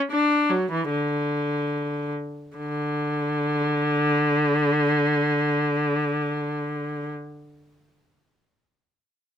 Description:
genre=classical, baroque-style suite movement for unaccompanied viola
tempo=free time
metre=none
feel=none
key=D major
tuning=A4 = 440 Hz
part: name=clear viola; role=solo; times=0.1-7.1 s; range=D3 to D4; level=-22 LUFS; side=left 1 dB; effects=none
room=little or no reverb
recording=close, detailed microphones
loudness=-22 LUFS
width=side -9 dB against mid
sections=0.0-2.6 A section; 2.6-7.6 B section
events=slowing down 0.0-2.6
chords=none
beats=free time

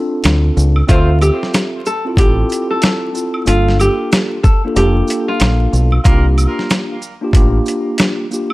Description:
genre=hip hop, boom-bap hip-hop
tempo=93 BPM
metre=4/4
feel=swing 62% on 16ths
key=D minor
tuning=A4 = 441 Hz
part: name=mellow tine electric piano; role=accompaniment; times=0.0-8.5 s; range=Bb3 to E5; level=-19 LUFS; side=equal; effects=medium stereo tremolo, high-pass filter, low-pass filter
part: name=deep dub fingered electric bass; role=bass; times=0.2-7.6 s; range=F1 to D2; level=-13 LUFS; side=equal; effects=none
part: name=dusty soul sampler-style drum kit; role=drums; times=0.2-8.5 s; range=hi-hat, kick drum, shaker, snare drum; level=-14 LUFS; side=equal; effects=none
part: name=maracas and woodblock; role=percussion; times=0.2-8.5 s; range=none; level=-28 LUFS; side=right 2 dB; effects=none
part: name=nylon-string guitar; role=melody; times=0.9-6.0 s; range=F4 to A4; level=-19 LUFS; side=equal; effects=high-pass filter, low-pass filter, tape echo
part: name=mellow horn section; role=stabs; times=0.9-1.1, 6.0-6.3 s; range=G3 to C5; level=-26 LUFS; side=right 1 dB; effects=high-pass filter, low-pass filter, tape echo
room=small room ambience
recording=vinyl crackle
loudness=-12 LUFS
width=side -19 dB against mid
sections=0.0-8.5 A section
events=none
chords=0.0 Bbmaj7 (rootless); 0.9 Dm7; 3.5 Gm7; 6.1 C7sus4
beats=0.25 | 0.89 1.54 2.18 2.83 | 3.47 4.12 4.76 5.41 | 6.05 6.70 7.34 7.99

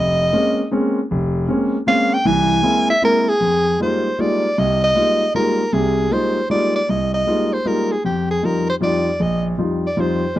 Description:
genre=jazz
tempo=156 BPM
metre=3/4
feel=swing 65% on 8ths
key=Bb dorian, F dorian from 3.4 s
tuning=A4 = 439 Hz
part: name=breathy soprano saxophone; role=melody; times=0.0-10.4 s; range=G4 to G#5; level=-18 LUFS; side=equal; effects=none
part: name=warm concert grand piano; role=accompaniment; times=0.0-10.4 s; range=F1 to F4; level=-18 LUFS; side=equal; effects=none
room=little or no reverb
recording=dry, close 1970s-style studio recording, lossy compression artefacts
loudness=-16 LUFS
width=side -14 dB against mid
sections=0.0-3.4 A section; 3.4-10.4 B section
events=soprano saxophone solo 0.0-3.4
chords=0.0 Bbm9; 2.2 Caug7; 3.4 Fm11; 8.0 Ebadd9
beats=0.33 0.71 | 1.10 1.48 1.86 | 2.25 2.63 3.02 | 3.40 3.79 4.18 | 4.56 4.95 5.33 | 5.72 6.10 6.49 | 6.87 7.26 7.64 | 8.03 8.41 8.80 | 9.19 9.57 9.96 | 10.34

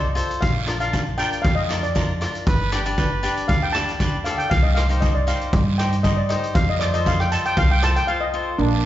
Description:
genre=calypso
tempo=118 BPM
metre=4/4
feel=straight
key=unclear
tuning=A4 = 438 Hz
part: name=cavaquinho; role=accompaniment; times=0.0-8.6 s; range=D4 to C5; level=-27 LUFS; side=left 2 dB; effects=none
part: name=upright bass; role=bass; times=0.0-8.9 s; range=G1 to G2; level=-23 LUFS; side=equal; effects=none
part: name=street-band drum kit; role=drums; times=0.2-8.1 s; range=hi-hat, kick drum, rim click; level=-23 LUFS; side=equal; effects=none
part: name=steel pan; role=melody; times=0.4-8.8 s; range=Bb3 to A5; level=-24 LUFS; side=left 1 dB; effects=none
part: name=guiro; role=percussion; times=0.4-8.9 s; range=none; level=-34 LUFS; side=right 6 dB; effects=none
part: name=clear trumpet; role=second line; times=2.5-3.3 s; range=G4 to B4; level=-29 LUFS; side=right 2 dB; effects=none
room=moderate concert hall reverb, RT60 2.2 s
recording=recorded in a church or concert hall, nothing above 7.7 kHz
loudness=-18 LUFS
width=side -13 dB against mid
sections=0.0-8.6 A section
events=steel pan solo 0.0-8.6; break 8.1-8.6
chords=0.4 Bb; 2.5 G; 4.5 Cm; 6.6 F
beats=| 0.43 0.94 1.45 1.96 | 2.47 2.98 3.49 4.00 | 4.51 5.02 5.53 6.04 | 6.55 7.07 7.58 8.09 | 8.60

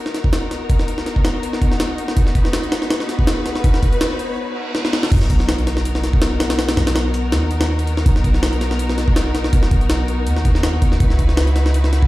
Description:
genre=drum and bass, jungle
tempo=163 BPM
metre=4/4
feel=swing 54% on 16ths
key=unclear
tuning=A4 = 439 Hz
part: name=rich symphonic string section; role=sustained chords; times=0.0-12.1 s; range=B3 to B4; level=-25 LUFS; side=left 2 dB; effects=none
part: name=riser, reverse cymbal and sub drop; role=sound effects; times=1.9-6.6 s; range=none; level=-29 LUFS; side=equal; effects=none
part: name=jungle sampler-style drum kit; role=drums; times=0.1-12.1 s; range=crash cymbal, hi-hat, kick drum, snare drum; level=-17 LUFS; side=equal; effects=small room ambience
part: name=long sustained 808-style bass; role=bass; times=5.1-12.1 s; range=B1 to D#2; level=-18 LUFS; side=equal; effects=none
room=light reverb, digital ambience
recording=played on a big sound system in a bare room, large studio reverb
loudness=-15 LUFS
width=side -18 dB against mid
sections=0.0-5.1 A section; 5.1-12.1 B section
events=build-up 0.0-5.1; break 4.4-5.1; reverse cymbal 4.4-5.1; drum fill 4.7-5.1; drop 5.1-12.1; impact 5.1-6.6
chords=0.0 Bmaj7; 11.0 C#m11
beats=0.33 | 0.70 1.06 1.43 1.80 | 2.17 2.54 2.90 3.27 | 3.64 4.01 4.38 4.75 | 5.11 5.48 5.85 6.22 | 6.59 6.95 7.32 7.69 | 8.06 8.43 8.79 9.16 | 9.53 9.90 10.27 10.63 | 11.00 11.37 11.74

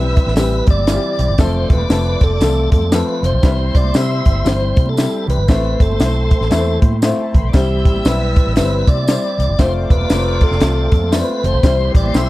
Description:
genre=uptempo 1960s-style soul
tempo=117 BPM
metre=4/4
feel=swing 61% on 8ths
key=C major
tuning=A4 = 440 Hz
part: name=tonewheel organ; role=melody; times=0.0-12.3 s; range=G4 to E5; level=-21 LUFS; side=equal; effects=fast rotary speaker
part: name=warm studio string section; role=second line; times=0.0-12.3 s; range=D4 to E6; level=-30 LUFS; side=equal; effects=none
part: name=clear upright piano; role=accompaniment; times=0.0-12.3 s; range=E3 to E5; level=-22 LUFS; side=left 3 dB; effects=none
part: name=percussive tonewheel organ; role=sustained chords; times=0.0-12.3 s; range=G3 to F4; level=-30 LUFS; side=right 1 dB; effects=none
part: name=vintage muted fingered electric bass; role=bass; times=0.0-12.3 s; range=E1 to C3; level=-18 LUFS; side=equal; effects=none
part: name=congas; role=percussion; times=0.0-12.3 s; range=none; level=-30 LUFS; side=right 3 dB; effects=none
part: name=compact cocktail drum kit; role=drums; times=0.2-12.3 s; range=hi-hat, kick drum, snare drum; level=-14 LUFS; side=equal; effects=none
part: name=tambourine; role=percussion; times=0.4-12.3 s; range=none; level=-35 LUFS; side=right 3 dB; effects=none
part: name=warm horn section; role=second line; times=7.5-12.3 s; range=C3 to G4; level=-29 LUFS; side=equal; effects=none
room=studio ambience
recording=dark, warm production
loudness=-12 LUFS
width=side -17 dB against mid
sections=0.0-12.3 A section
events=none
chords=0.0 C; 1.4 F; 3.4 C; 5.5 Am; 9.6 F; 11.6 C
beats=0.36 0.88 | 1.39 1.90 2.41 2.92 | 3.44 3.95 4.46 4.97 | 5.49 6.00 6.51 7.03 | 7.54 8.05 8.56 9.07 | 9.59 10.10 10.61 11.12 | 11.64 12.15

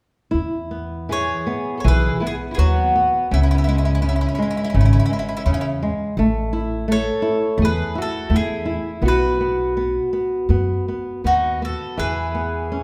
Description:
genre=fado-style ballad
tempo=82 BPM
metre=4/4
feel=rubato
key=E major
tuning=A4 = 440 Hz
part: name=flamenco guitar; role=accompaniment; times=0.3-12.8 s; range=C#3 to E4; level=-26 LUFS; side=equal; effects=none
part: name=upright bass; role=bass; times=0.3-12.8 s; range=G#1 to F#2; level=-23 LUFS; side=equal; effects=none
part: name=mandolin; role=melody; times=1.1-12.8 s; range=E4 to C#5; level=-26 LUFS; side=equal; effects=none
part: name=fingerpicked twelve-string acoustic guitar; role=second line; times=1.1-12.8 s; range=B3 to A4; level=-27 LUFS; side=equal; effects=none
room=moderate recital hall reverb, RT60 1.7 s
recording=none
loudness=-20 LUFS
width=mono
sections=0.3-12.8 A section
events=none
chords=0.3 Eadd9; 3.3 C#m; 6.2 Amaj7; 9.0 B; 12.0 E6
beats=| 0.34 1.10 1.84 2.58 | 3.31 4.03 4.75 5.46 | 6.16 6.87 7.58 8.30 | 9.02 9.76 10.49 11.24 | 11.99 12.72

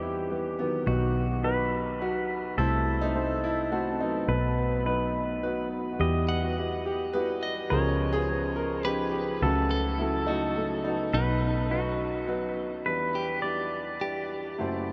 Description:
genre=acoustic folk-pop ballad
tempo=105 BPM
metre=3/4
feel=straight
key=unclear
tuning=A4 = 440 Hz
part: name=warm grand piano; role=melody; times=0.0-14.9 s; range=F#1 to C5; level=-31 LUFS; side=equal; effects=none
part: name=pedal steel guitar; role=second line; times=0.0-14.9 s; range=F#4 to D#5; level=-35 LUFS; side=equal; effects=none
part: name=vintage muted fingered electric bass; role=bass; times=0.0-12.8 s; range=B1 to E2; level=-33 LUFS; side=equal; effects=none
part: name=clean electric guitar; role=arpeggios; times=6.3-14.7 s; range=D#4 to F#5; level=-38 LUFS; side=equal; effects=tremolo
room=wet huge ambient reverb, RT60 7.3 s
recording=in a vast, echoing space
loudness=-28 LUFS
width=mono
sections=0.0-12.9 A section; 12.9-14.9 B section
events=pedal steel guitar solo 12.9-14.9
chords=0.0 Em; 0.9 B; 2.6 Am/C; 4.3 B; 6.0 Emadd9; 7.7 C#7; 9.4 F#m/C#; 11.1 B; 12.9 Em7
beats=0.30 | 0.86 1.43 2.00 | 2.57 3.14 3.71 | 4.28 4.85 5.43 | 6.00 6.57 7.14 | 7.71 8.28 8.85 | 9.42 9.99 10.56 | 11.13 11.71 12.28 | 12.86 13.43 14.01 | 14.58

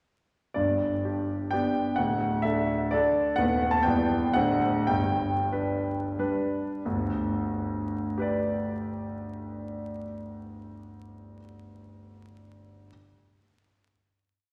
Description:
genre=classical, romantic triple-time dance for piano with dotted rhythms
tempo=87-139 BPM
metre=3/4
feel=rubato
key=G major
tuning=A4 = 440 Hz
part: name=clear concert grand piano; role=solo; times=0.5-12.9 s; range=D1 to A5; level=-28 LUFS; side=equal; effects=none
room=wet recital hall reverb, RT60 1.6 s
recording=vinyl crackle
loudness=-28 LUFS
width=mono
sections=0.6-6.9 A section; 6.9-10.7 final chord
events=slowing down 2.7-6.9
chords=0.6 G; 2.0 D; 3.4 B7/D#; 3.9 Em; 4.4 D7; 4.9 G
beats=| 0.56 1.05 1.53 | 1.99 2.46 2.94 | 3.38 3.85 4.36 | 4.89 5.52 6.19 | 6.85 7.51 8.17 | 8.79 9.44 10.11

